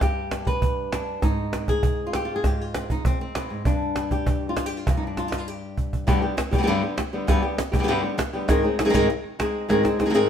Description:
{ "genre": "flamenco", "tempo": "198 BPM", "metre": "4/4", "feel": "straight", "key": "G phrygian dominant", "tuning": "A4 = 441 Hz", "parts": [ { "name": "flamenco guitar", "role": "melody", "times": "0.0-10.3 s", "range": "G2 to B4", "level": "-23 LUFS", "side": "left 1 dB", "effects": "none" }, { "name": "cajon", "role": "percussion", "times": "0.0-10.1 s", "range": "none", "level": "-25 LUFS", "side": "right 1 dB", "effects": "none" } ], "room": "wet stone room reverb, RT60 1.0 s", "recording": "band playing live in one room", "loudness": "-21 LUFS", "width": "side -8 dB against mid", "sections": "0.0-6.1 A section; 6.1-10.3 B section", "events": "drum fill 5.2-6.1, 9.7-10.3", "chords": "0.0 G; 1.2 Ab; 3.7 N.C.; 6.1 G; 8.5 Ab", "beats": "| 0.01 0.31 0.62 0.92 | 1.23 1.53 1.83 2.14 | 2.44 2.74 3.05 3.35 | 3.65 3.96 4.26 4.56 | 4.87 5.17 5.47 5.78 | 6.08 6.38 6.68 6.98 | 7.28 7.59 7.89 8.19 | 8.49 8.79 9.09 9.39 | 9.69 9.99" }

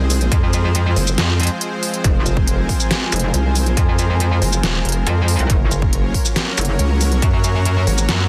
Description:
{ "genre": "heavy wobble dubstep", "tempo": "139 BPM", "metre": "4/4", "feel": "half-time", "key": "F phrygian", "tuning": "A4 = 439 Hz", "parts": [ { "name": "supersaw pad", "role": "sustained chords", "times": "0.0-8.3 s", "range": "F3 to Db5", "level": "-28 LUFS", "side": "equal", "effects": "sidechain pumping" }, { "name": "vowel-sweep wobble bass", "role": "bass", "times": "0.0-8.1 s", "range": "Eb1 to Db2", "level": "-20 LUFS", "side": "equal", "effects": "chorus, overdrive" }, { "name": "granular cloud pad", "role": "texture", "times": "0.8-8.3 s", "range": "F4 to Bb5", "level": "-32 LUFS", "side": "equal", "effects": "built-in reverb, sidechain pumping" }, { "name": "dubstep drum kit", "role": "drums", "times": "0.1-8.2 s", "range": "hi-hat, shaker, snare drum", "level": "-23 LUFS", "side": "equal", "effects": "small room ambience" }, { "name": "metallic wobble bass", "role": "bass", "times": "0.3-8.3 s", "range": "F1 to Gb2", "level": "-19 LUFS", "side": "equal", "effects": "chorus, overdrive" }, { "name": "electronic kick drum", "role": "drums", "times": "0.3-7.3 s", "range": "none", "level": "-20 LUFS", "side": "equal", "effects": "small room ambience" } ], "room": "little or no reverb", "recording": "dense, heavily limited modern master", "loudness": "-17 LUFS", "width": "mono", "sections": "0.0-8.3 A section", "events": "none", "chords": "0.0 Fm; 5.5 Gb", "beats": "| 0.32 0.75 1.18 1.61 | 2.04 2.48 2.91 3.34 | 3.77 4.20 4.63 5.07 | 5.50 5.93 6.36 6.79 | 7.22 7.66 8.09" }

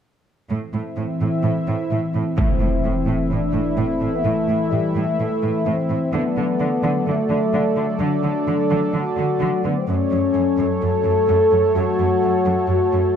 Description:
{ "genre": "cinematic", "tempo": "128 BPM", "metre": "4/4", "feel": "straight", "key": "unclear", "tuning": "A4 = 439 Hz", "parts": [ { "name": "sweeping resonant pad", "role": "sustained chords", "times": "0.5-13.2 s", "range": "E3 to E5", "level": "-22 LUFS", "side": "left 1 dB", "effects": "chorus" }, { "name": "rich symphonic cello section", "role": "bass", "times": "0.5-13.0 s", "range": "F#2 to D3", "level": "-24 LUFS", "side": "right 3 dB", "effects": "none" }, { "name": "dark French horn section", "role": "sustained chords", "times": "2.4-13.2 s", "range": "G3 to A4", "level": "-20 LUFS", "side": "left 2 dB", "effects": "none" }, { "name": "impact", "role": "sound effects", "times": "2.4-4.3 s", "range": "none", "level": "-23 LUFS", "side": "equal", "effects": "none" } ], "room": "moderate scoring stage reverb, RT60 1.9 s", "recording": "dark, warm production", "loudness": "-18 LUFS", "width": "side -8 dB against mid", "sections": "0.5-2.4 A section; 2.4-13.2 B section", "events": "impact 2.4-4.3", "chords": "0.5 Am; 6.1 D; 9.9 F#m", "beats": "| 0.50 0.97 1.44 1.91 | 2.38 2.85 3.31 3.78 | 4.25 4.72 5.19 5.66 | 6.13 6.60 7.07 7.53 | 8.00 8.47 8.94 9.41 | 9.88 10.35 10.81 11.28 | 11.75 12.22 12.69 13.16" }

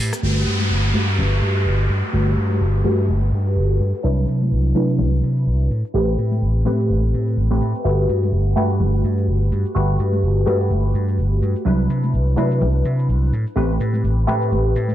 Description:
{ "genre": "filtered disco house", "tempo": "126 BPM", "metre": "4/4", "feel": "swing 57% on 16ths", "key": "G major", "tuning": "A4 = 440 Hz", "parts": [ { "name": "funky polysynth comp", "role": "accompaniment", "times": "0.0-14.9 s", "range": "F#3 to B4", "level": "-23 LUFS", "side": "right 1 dB", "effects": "chorus, phaser, low-pass filter" }, { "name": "vintage slap bass", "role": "bass", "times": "0.0-14.9 s", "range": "G1 to C3", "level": "-18 LUFS", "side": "equal", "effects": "low-pass filter" }, { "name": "electronic rim click and shaker", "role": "drums", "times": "0.1-14.9 s", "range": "none", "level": "-32 LUFS", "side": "right 1 dB", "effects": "low-pass filter on perc, low-pass filter on hats, low-pass filter on snare" }, { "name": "tube shaker and congas", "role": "percussion", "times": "0.1-14.9 s", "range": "none", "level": "-28 LUFS", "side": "left 4 dB", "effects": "low-pass filter on perc" }, { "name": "downlifter", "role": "sound effects", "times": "0.2-4.0 s", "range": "none", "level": "-26 LUFS", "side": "right 1 dB", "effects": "none" } ], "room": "light reverb, digital ambience", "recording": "dark, warm production", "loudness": "-16 LUFS", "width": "side -12 dB against mid", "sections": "0.2-14.9 A section", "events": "filter sweep 0.2-14.9", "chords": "0.2 Gmaj9; 4.0 Cmaj9#11; 5.7 Am9; 7.8 Gmaj9; 11.7 Cmaj9#11; 13.3 Am9", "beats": "| 0.23 0.71 1.18 1.66 | 2.13 2.61 3.09 3.56 | 4.04 4.52 4.99 5.47 | 5.94 6.42 6.90 7.37 | 7.85 8.32 8.80 9.28 | 9.75 10.23 10.71 11.18 | 11.66 12.13 12.61 13.09 | 13.56 14.04 14.52" }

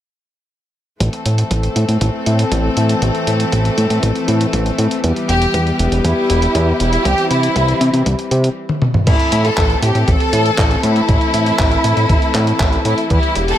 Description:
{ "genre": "italo disco", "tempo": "119 BPM", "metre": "4/4", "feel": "straight", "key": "A minor", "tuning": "A4 = 440 Hz", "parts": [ { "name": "rich chamber string section", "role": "sustained chords", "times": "1.0-13.6 s", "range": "E3 to A4", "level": "-20 LUFS", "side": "left 2 dB", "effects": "none" }, { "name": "fat analog bass", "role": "bass", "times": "1.0-13.5 s", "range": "E1 to C3", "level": "-16 LUFS", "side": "equal", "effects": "none" }, { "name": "dusty soul sampler-style drum kit", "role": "drums", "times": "1.0-13.6 s", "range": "crash cymbal, handclaps, hi-hat, toms", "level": "-22 LUFS", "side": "equal", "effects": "gated reverb" }, { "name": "electronic kick drum", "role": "drums", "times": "1.0-13.2 s", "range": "none", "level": "-18 LUFS", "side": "equal", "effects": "high-pass filter on kick, high-pass filter on room" }, { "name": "rich studio violin section", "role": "melody", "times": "5.3-13.6 s", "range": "E4 to A4", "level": "-18 LUFS", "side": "equal", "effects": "ping-pong delay" } ], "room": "light reverb", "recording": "none", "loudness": "-13 LUFS", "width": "side -11 dB against mid", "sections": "1.0-9.1 A section; 9.1-13.6 B section", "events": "drum fill 8.7-9.1", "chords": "1.0 Am; 5.0 Em; 7.1 C; 9.1 Am", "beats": "| 1.00 1.51 2.01 2.52 | 3.02 3.52 4.03 4.53 | 5.04 5.54 6.04 6.55 | 7.05 7.56 8.06 8.57 | 9.07 9.57 10.08 10.58 | 11.09 11.59 12.10 12.60 | 13.10" }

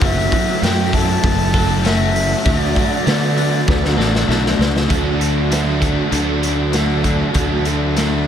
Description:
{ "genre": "rock, shoegaze and dream pop", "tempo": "98 BPM", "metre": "4/4", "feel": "straight", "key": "D major", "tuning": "A4 = 439 Hz", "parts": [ { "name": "mellow concert flute", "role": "melody", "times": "0.0-4.3 s", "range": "D5 to A5", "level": "-24 LUFS", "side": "left 1 dB", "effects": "analog delay" }, { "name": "direct-recorded clean electric guitar", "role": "arpeggios", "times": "0.0-8.3 s", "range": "E3 to A4", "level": "-27 LUFS", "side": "right 7 dB", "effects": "ensemble chorus, analog delay" }, { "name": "overdriven electric guitar", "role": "riff", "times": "0.0-8.3 s", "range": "D3 to F#4", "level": "-22 LUFS", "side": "left 9 dB", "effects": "lush chorus" }, { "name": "overdriven semi-hollow guitar", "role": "riff", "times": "0.0-8.3 s", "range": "F#2 to A4", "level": "-22 LUFS", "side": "right 8 dB", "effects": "reverse reverb" }, { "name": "fuzz fingered electric bass", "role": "bass", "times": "0.0-8.3 s", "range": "F#1 to D3", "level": "-20 LUFS", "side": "equal", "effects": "overdrive" }, { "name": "raw garage drum kit", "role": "drums", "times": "0.0-8.1 s", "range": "hi-hat, kick drum, snare drum", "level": "-20 LUFS", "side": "equal", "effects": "none" } ], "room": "moderate huge ambient reverb, RT60 6.2 s", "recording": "dreamy mix soaked in reverb", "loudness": "-14 LUFS", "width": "side -9 dB against mid", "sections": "0.0-4.9 A section; 4.9-8.3 B section", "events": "drum fill 3.7-4.9", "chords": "0.0 F#m7; 2.5 D69; 4.9 D", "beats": "| 0.01 0.62 1.23 1.84 | 2.45 3.06 3.67 4.28 | 4.90 5.51 6.12 6.73 | 7.35 7.96" }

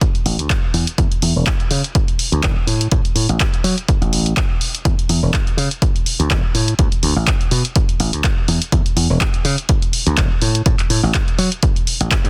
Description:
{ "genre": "filtered disco house", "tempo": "124 BPM", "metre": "4/4", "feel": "swing 55% on 16ths", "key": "unclear", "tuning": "A4 = 440 Hz", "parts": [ { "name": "electronic kick drum", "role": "drums", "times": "0.0-12.2 s", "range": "none", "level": "-20 LUFS", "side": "equal", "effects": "none" }, { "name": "punchy analog drum machine", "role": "drums", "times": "0.0-12.3 s", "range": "handclaps, hi-hat", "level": "-24 LUFS", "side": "equal", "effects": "sidechain pumping on hats" }, { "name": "dry thumbed slap bass", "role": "bass", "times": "0.1-12.3 s", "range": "E1 to F#3", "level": "-20 LUFS", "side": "equal", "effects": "sidechain pumping, low-pass filter" } ], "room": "little or no reverb", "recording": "dense, heavily limited modern master", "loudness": "-17 LUFS", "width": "mono", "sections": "0.0-12.3 A section", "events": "filter sweep on slap bass 0.0-12.3", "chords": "none", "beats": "0.01 0.50 | 0.98 1.47 1.95 2.43 | 2.92 3.40 3.89 4.37 | 4.85 5.34 5.82 6.30 | 6.79 7.27 7.76 8.24 | 8.72 9.21 9.69 10.18 | 10.66 11.14 11.63 12.11" }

